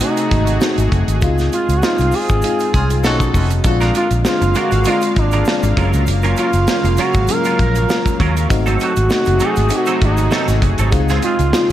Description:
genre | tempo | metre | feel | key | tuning
polished 1980s jazz-funk pop | 99 BPM | 4/4 | swing 54% on 16ths | unclear | A4 = 441 Hz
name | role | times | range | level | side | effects
expressive portamento lead | melody | 0.0-11.7 s | D4 to Bb4 | -20 LUFS | right 2 dB | chorus
FM electric piano | accompaniment | 0.0-11.7 s | Ab3 to Gb4 | -21 LUFS | left 4 dB | wide subtle chorus
lush unison pad | sustained chords | 0.0-11.7 s | C3 to F5 | -24 LUFS | equal | chorus
modern studio drum kit | drums | 0.0-11.7 s | hi-hat, kick drum, snare drum | -20 LUFS | equal | none
tube shaker | percussion | 0.2-11.7 s | none | -38 LUFS | right 7 dB | none
vintage muted fingered electric bass | bass | 0.3-11.7 s | F1 to Eb2 | -16 LUFS | equal | none
warm horn section | second line | 2.7-3.5 s | Db4 to A4 | -24 LUFS | right 1 dB | digital delay
semi-hollow electric guitar | riff | 3.6-11.6 s | Gb3 to Bb4 | -23 LUFS | right 4 dB | ensemble chorus
room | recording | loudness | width
light reverb, small room ambience | dark, warm production | -13 LUFS | side -12 dB against mid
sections
0.0-11.7 A section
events
band accent 1.2-3.6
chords
0.0 Ab7b9; 1.2 Dbmaj7; 3.0 B9; 3.6 Bb7; 5.8 Gbmaj7; 8.5 Ab7b9; 10.9 Dbmaj7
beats
0.01 0.62 | 1.22 1.83 2.44 3.04 | 3.65 4.26 4.86 5.47 | 6.08 6.68 7.29 7.90 | 8.50 9.11 9.72 10.32 | 10.93 11.54

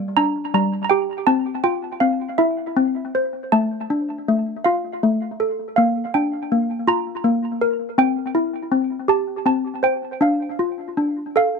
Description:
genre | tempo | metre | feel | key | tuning
children's music, lullaby | 54 BPM (dotted quarters) | 6/8 | rubato | unclear | A4 = 440 Hz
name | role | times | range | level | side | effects
malleted handbells | solo | 0.0-11.6 s | G3 to Bb5 | -18 LUFS | equal | tape echo
room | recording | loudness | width
light reverb | dark, warm production | -18 LUFS | side -5 dB against mid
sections
0.0-11.6 A section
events
none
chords
0.0 Gm; 1.3 Csus4; 2.4 C; 3.5 Dm; 5.8 Bb; 8.0 C; 10.2 F6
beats
0.18 | 1.28 2.40 | 3.53 4.65 | 5.77 6.88 | 7.98 9.09 | 10.22 11.36

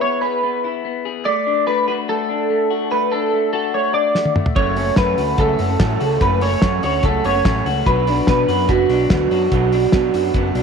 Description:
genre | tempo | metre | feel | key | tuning
jangly indie pop | 145 BPM | 4/4 | straight | unclear | A4 = 440 Hz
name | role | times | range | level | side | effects
electric guitar through a small old amp | melody | 0.0-10.6 s | F#4 to D5 | -18 LUFS | right 2 dB | analog chorus
electric guitar through a small old amp | arpeggios | 0.0-10.6 s | F#3 to G#4 | -24 LUFS | left 11 dB | phaser
cloth-damped thuddy drum kit | drums | 4.2-10.6 s | hi-hat, kick drum, ride cymbal, snare drum, toms | -21 LUFS | equal | none
electric guitar through a small old amp | accompaniment | 4.6-10.6 s | B2 to F#4 | -24 LUFS | right 11 dB | none
fat analog bass | bass | 4.6-10.6 s | F#1 to B2 | -22 LUFS | equal | none
room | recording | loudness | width
moderate echo chamber reverb, RT60 1.7 s, small room ambience | 1960s-style stereo with parts hard left and right | -15 LUFS | side -6 dB against mid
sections
0.0-10.6 A section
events
drum fill 4.2-4.6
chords
0.0 E; 1.3 D; 4.4 F#m; 7.9 Bm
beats
0.02 0.43 0.85 | 1.26 1.67 2.08 2.50 | 2.91 3.32 3.74 4.15 | 4.56 4.97 5.39 5.80 | 6.21 6.63 7.04 7.45 | 7.86 8.28 8.69 9.10 | 9.52 9.93 10.34

